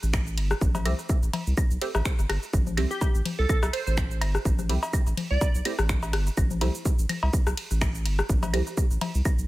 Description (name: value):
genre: minimal techno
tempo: 125 BPM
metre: 4/4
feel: swing 55% on 16ths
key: A minor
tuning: A4 = 440 Hz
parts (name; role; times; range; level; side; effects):
- saturated sub bass; bass; 0.0-9.5 s; G1 to C2; -26 LUFS; equal; sidechain pumping
- house drum kit; drums; 0.0-9.5 s; cabasa, finger snaps, hi-hat, ride cymbal; -35 LUFS; right 1 dB; none
- electronic kick drum; drums; 0.1-9.4 s; none; -25 LUFS; equal; none
- electronic cowbell, claves, rim click and congas; percussion; 0.1-9.4 s; none; -32 LUFS; left 3 dB; digital delay
- filtered dub chord stab; stabs; 0.9-8.6 s; A3 to G4; -34 LUFS; right 3 dB; phaser, analog chorus, digital delay
- glassy wavetable pluck; melody; 2.9-6.0 s; G4 to D5; -31 LUFS; right 3 dB; chorus, digital delay
room: little or no reverb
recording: none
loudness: -23 LUFS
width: side -18 dB against mid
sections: 0.0-9.5 A section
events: none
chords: 0.0 Am7